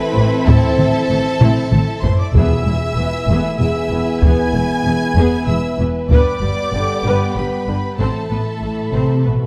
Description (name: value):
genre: cinematic, epic orchestral film score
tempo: 96 BPM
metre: 3/4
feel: straight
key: A minor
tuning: A4 = 439 Hz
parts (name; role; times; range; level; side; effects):
- warm symphonic violin section; melody; 0.0-9.2 s; A5 to G#6; -30 LUFS; equal; none
- warm symphonic violin section; second line; 0.0-9.2 s; A4 to G#5; -29 LUFS; equal; none
- mellow trombone section; sustained chords; 0.0-9.5 s; E3 to C4; -26 LUFS; equal; none
- warm French horn section; sustained chords; 0.0-9.5 s; A3 to C5; -27 LUFS; equal; none
- warm symphonic string section; sustained chords; 0.0-9.5 s; A3 to B5; -30 LUFS; equal; none
- warm symphonic viola section; accompaniment; 0.2-9.3 s; D3 to C5; -26 LUFS; equal; none
- dark symphonic cello section; bass; 0.2-9.5 s; E2 to C3; -24 LUFS; equal; none
- warm symphonic double bass section; bass; 0.2-9.3 s; E1 to A1; -23 LUFS; equal; none
- taiko ensemble; drums; 0.5-6.7 s; none; -18 LUFS; equal; none
- timpani; percussion; 2.4-3.2, 8.0-8.9 s; E2 to A2; -25 LUFS; equal; none
room: light reverb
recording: none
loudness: -16 LUFS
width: mono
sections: 0.0-9.5 A section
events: drum fill 1.4-2.3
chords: 0.0 Am; 2.3 E; 6.1 G; 8.0 Amadd9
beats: | 0.47 1.09 1.72 | 2.35 2.97 3.60 | 4.23 4.85 5.48 | 6.11 6.74 7.36 | 7.99 8.62 9.25